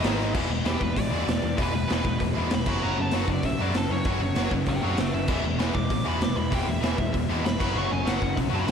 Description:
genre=punk rock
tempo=194 BPM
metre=4/4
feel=straight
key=E major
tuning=A4 = 440 Hz
part: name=nasal lead guitar with a parked wah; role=melody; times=0.0-8.7 s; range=G4 to D6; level=-32 LUFS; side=right 1 dB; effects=overdrive, slapback echo, tape echo
part: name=overdriven electric guitar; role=riff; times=0.0-8.7 s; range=E2 to G#3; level=-31 LUFS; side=right 9 dB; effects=slapback echo
part: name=tight distorted guitar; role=riff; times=0.0-8.7 s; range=G#2 to F#4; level=-30 LUFS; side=left 10 dB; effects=distortion
part: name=overdriven picked electric bass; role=bass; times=0.0-8.7 s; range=E1 to F#2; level=-30 LUFS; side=equal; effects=none
part: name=raw garage drum kit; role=drums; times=0.0-8.7 s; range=crash cymbal, hi-hat, kick drum, snare drum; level=-27 LUFS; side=equal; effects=none
room=moderate lush hall reverb, RT60 1.7 s, small room reverb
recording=big arena sound, lossy compression artefacts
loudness=-23 LUFS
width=side -7 dB against mid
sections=0.4-8.7 A section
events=drum fill 0.2; lead electric guitar solo 0.4-8.7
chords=0.0 G#5; 0.4 E; 2.7 F#5; 5.3 E; 7.6 F#5

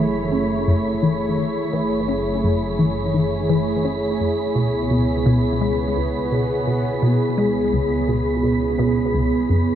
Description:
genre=ambient, sequencer-driven space music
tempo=85 BPM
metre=4/4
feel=straight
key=C# minor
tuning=A4 = 440 Hz
part: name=sweeping resonant pad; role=sustained chords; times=0.0-9.8 s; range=A3 to C#5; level=-21 LUFS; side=right 1 dB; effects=lush chorus
part: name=resonant blip pluck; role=riff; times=0.0-9.7 s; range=C#2 to C#4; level=-21 LUFS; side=left 1 dB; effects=phaser, analog chorus, analog delay
part: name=fat analog bass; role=bass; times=0.0-9.8 s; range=F#1 to C#2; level=-29 LUFS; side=equal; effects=none
part: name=wind-like tuned noise texture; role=texture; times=0.0-9.8 s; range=B5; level=-32 LUFS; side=right 2 dB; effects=built-in reverb, lush chorus
room=moderate plate reverb, RT60 3.3 s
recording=dreamy mix soaked in reverb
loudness=-18 LUFS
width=side -10 dB against mid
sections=0.0-9.8 A section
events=filter sweep on synth arpeggio sound 0.0-9.8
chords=0.0 F#m7; 4.6 C#m7

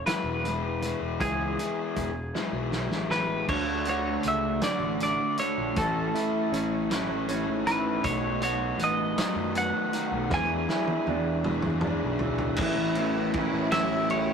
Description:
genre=indie rock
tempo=53 BPM (dotted quarters)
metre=6/8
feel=straight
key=A major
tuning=A4 = 437 Hz
part: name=twelve-string electric guitar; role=melody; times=0.0-14.3 s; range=G#4 to G#5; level=-29 LUFS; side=equal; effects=none
part: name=electric guitar through a small old amp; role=riff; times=0.0-14.3 s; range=E2 to F#4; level=-32 LUFS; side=right 4 dB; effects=none
part: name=raw garage guitar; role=riff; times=0.1-14.3 s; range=A2 to G#4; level=-31 LUFS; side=left 4 dB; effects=overdrive
part: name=loose indie drum kit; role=drums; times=0.1-14.3 s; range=crash cymbal, hi-hat, kick drum, ride cymbal, snare drum, toms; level=-33 LUFS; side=equal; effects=none
part: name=fuzz picked electric bass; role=bass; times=0.2-14.3 s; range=E1 to F#2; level=-34 LUFS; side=equal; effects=overdrive
part: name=string machine, violas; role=sustained chords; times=3.5-14.3 s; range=D4 to C#6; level=-42 LUFS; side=right 2 dB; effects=none
part: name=growling trumpet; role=second line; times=12.6-14.3 s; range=E4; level=-38 LUFS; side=right 3 dB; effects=none
room=moderate stone room reverb, RT60 1.4 s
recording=rough rehearsal-room recording, tube saturation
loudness=-25 LUFS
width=side -6 dB against mid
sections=0.0-3.5 A section; 3.5-12.6 B section; 12.6-14.3 C section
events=drum fill 2.3-3.5, 10.3-12.6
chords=0.0 E; 3.5 Dmaj7; 5.8 Amaj7; 8.0 B7; 10.3 E7; 12.6 Aadd9

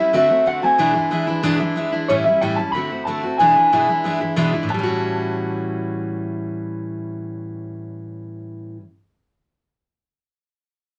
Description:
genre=rock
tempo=184 BPM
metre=4/4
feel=straight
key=A mixolydian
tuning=A4 = 438 Hz
part: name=electric guitar through a small old amp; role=melody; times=0.0-8.8 s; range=C#5 to B5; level=-20 LUFS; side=equal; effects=none
part: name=picked steel-string acoustic guitar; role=accompaniment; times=0.0-8.9 s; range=E2 to F#4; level=-24 LUFS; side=equal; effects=none
room=moderate small room ambience, RT60 0.5 s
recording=none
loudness=-20 LUFS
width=mono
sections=0.0-2.1 A section; 2.1-4.7 B section; 4.7-7.3 C section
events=none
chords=0.1 D7; 0.8 E7; 2.1 A7; 2.7 D7; 3.4 E7; 4.7 A6

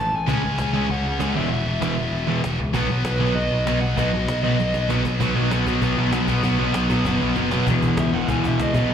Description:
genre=punk rock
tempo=195 BPM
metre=4/4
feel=straight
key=E major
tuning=A4 = 438 Hz
part: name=crunchy overdriven guitar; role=melody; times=0.0-4.9, 8.0-8.9 s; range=B4 to A5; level=-27 LUFS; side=equal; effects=slapback echo
part: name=picked electric bass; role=bass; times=0.0-8.9 s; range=E1 to C#2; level=-25 LUFS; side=left 1 dB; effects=none
part: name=distorted electric guitar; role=riff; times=0.3-8.9 s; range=E2 to C#4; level=-26 LUFS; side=left 10 dB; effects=distortion, slapback echo
part: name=high-gain distorted guitar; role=riff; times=0.3-7.7 s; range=E2 to C#4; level=-27 LUFS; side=left 1 dB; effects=distortion, slapback echo
part: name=sludgy distorted guitar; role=riff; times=0.3-8.9 s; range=E2 to C#4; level=-24 LUFS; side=right 7 dB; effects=overdrive
part: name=cajon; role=drums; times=0.3-8.8 s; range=none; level=-29 LUFS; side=left 1 dB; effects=none
room=light reverb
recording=live gig heard through the venue's PA, recital hall reverb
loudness=-19 LUFS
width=side -8 dB against mid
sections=0.0-5.2 A section; 5.2-7.7 B section; 7.7-8.9 C section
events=drum fill 4.6-5.2, 7.4-7.7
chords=0.3 C#5; 1.4 E5; 2.7 B; 5.2 B5; 7.7 E5

